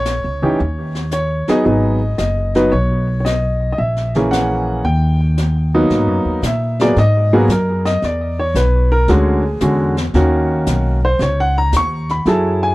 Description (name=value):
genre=jazz piano trio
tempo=113 BPM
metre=4/4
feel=swing 68% on 8ths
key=G# minor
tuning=A4 = 440 Hz
part: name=clear baby grand piano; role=melody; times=0.0-12.7 s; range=D3 to C#6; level=-16 LUFS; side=equal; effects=none
part: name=upright bass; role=bass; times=0.0-12.7 s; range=F#1 to A#2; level=-17 LUFS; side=equal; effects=none
part: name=jazz brush drum kit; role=drums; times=0.1-12.7 s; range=brushed snare drum, hi-hat, snare drum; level=-26 LUFS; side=left 2 dB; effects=none
room=light reverb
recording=none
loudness=-14 LUFS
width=side -19 dB against mid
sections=0.0-5.9 A section; 5.9-12.7 B section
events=grand piano solo 5.9-12.7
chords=0.0 A#dim; 0.6 D#7(no3); 1.7 G#m7; 3.8 A#m7b5; 4.8 D#; 5.9 G#m9; 8.0 E13; 10.1 D#m7